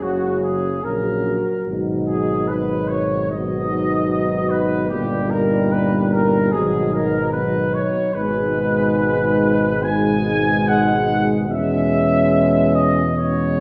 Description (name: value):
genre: classical, hymn-like piece for brass band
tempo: 73 BPM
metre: 4/4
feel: rubato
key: unclear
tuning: A4 = 440 Hz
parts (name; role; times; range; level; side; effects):
- mellow trumpet section; melody; 0.0-13.6 s; F#4 to G#5; -24 LUFS; equal; none
- dark French horn section; second line; 0.0-13.6 s; C#4 to F#4; -28 LUFS; equal; none
- clear trombone; accompaniment; 0.0-13.6 s; A#2 to C#3; -27 LUFS; equal; none
- warm trombone section; accompaniment; 0.0-13.6 s; F#3 to G#3; -26 LUFS; equal; none
- warm tuba; bass; 0.0-13.6 s; F#1 to E2; -26 LUFS; equal; none
room: wet recital hall reverb, RT60 1.6 s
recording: recorded in a church or concert hall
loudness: -19 LUFS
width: mono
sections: 0.0-13.6 A section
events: none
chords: 0.0 F#; 1.7 G#m7; 4.9 D#/G; 6.5 G#m7; 8.2 G#m; 11.5 C#m7/E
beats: 0.02 0.85 | 1.69 2.52 3.33 4.12 | 4.92 5.74 6.54 7.35 | 8.16 8.98 9.86 10.69 | 11.50 12.33 13.18